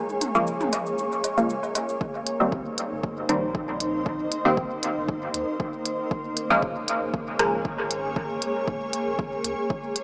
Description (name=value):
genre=dub techno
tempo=117 BPM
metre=4/4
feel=straight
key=C phrygian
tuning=A4 = 435 Hz
part: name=granular cloud pad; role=sustained chords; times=0.0-10.0 s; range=Bb3 to Db5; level=-31 LUFS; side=equal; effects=built-in reverb, sidechain pumping
part: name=electronic cabasa and hi-hat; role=drums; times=0.1-10.0 s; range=none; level=-32 LUFS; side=equal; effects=none
part: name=electronic toms and woodblock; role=percussion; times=0.2-1.9 s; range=none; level=-36 LUFS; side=equal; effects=sidechain pumping on perc, sidechain pumping on toms, dub echo
part: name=filtered dub chord stab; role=stabs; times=0.3-7.6 s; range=Db3 to C4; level=-29 LUFS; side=equal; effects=chorus, phaser, sidechain pumping, dub echo
part: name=electronic kick drum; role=drums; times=2.0-9.8 s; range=none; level=-34 LUFS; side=equal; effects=none
part: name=warm sub bass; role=bass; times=2.5-9.5 s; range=F1 to Eb2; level=-46 LUFS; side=equal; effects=sidechain pumping
room=moderate huge ambient reverb, RT60 7.0 s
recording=small speaker sound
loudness=-27 LUFS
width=mono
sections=0.0-2.0 A section; 2.0-10.0 B section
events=none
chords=0.0 Bbm7; 2.0 Cm7; 6.1 Bbm7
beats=0.47 0.98 1.50 | 2.01 2.52 3.03 3.55 | 4.06 4.57 5.09 5.60 | 6.11 6.62 7.14 7.65 | 8.16 8.68 9.19 9.70